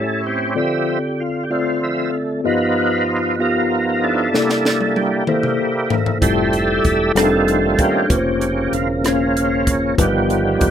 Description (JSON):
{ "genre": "slow gospel", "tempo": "64 BPM (dotted quarters)", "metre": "6/8", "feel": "straight", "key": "F major", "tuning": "A4 = 436 Hz", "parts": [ { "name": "mellow tine electric piano", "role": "accompaniment", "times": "0.0-10.7 s", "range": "G2 to F5", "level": "-20 LUFS", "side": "left 3 dB", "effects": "medium stereo tremolo" }, { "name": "overdriven tonewheel organ", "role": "sustained chords", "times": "0.0-10.7 s", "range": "Db3 to E5", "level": "-19 LUFS", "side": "right 3 dB", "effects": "slow rotary speaker, chorus vibrato" }, { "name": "crisp fusion drum kit", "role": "drums", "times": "4.3-10.7 s", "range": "hi-hat, kick drum, rim click, snare drum, toms", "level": "-21 LUFS", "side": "equal", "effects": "none" }, { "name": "fingered electric bass", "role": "bass", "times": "6.2-10.7 s", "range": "E1 to G1", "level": "-24 LUFS", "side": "equal", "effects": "none" } ], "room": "light reverb, studio reverb", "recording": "rough home demo mix", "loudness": "-15 LUFS", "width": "side -9 dB against mid", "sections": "0.0-10.7 A section", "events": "tonewheel organ solo 0.0-10.7; drum fill 4.3-6.2", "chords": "0.0 A7; 0.6 Dm7; 2.4 G7alt; 4.3 C13; 6.2 Fmaj9; 7.2 F13; 8.1 Bbmadd9; 10.0 G7b13" }